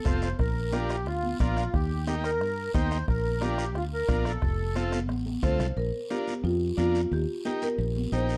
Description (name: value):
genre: latin, cumbia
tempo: 178 BPM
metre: 4/4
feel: straight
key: Bb major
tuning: A4 = 440 Hz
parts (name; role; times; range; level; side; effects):
- accordion; second line; 0.0-4.9 s; F4 to C5; -34 LUFS; equal; light tremolo tuning
- combo organ; accompaniment; 0.0-8.4 s; C4 to Bb4; -36 LUFS; equal; none
- congas; percussion; 0.0-8.3 s; none; -39 LUFS; equal; none
- fingered electric bass; bass; 0.1-8.4 s; F1 to G2; -32 LUFS; equal; none
- bombo; percussion; 0.1-5.8 s; none; -32 LUFS; equal; none
- guiro; percussion; 0.1-8.4 s; none; -49 LUFS; equal; none
- marimba with medium mallets; melody; 5.4-8.4 s; F4 to C5; -32 LUFS; equal; none
room: light reverb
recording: dark, warm production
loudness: -28 LUFS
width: mono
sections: 0.0-5.8 A section; 5.8-8.4 B section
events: accordion solo 0.0-5.8; drum fill 5.1-5.8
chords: 0.4 Bb; 1.7 Eb; 3.1 Bb; 4.4 F; 5.8 Bb; 7.1 Eb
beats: 0.05 | 0.39 0.73 1.06 1.40 | 1.74 2.07 2.41 2.74 | 3.08 3.42 3.75 4.09 | 4.42 4.76 5.10 5.43 | 5.77 6.11 6.44 6.78 | 7.11 7.45 7.79 8.12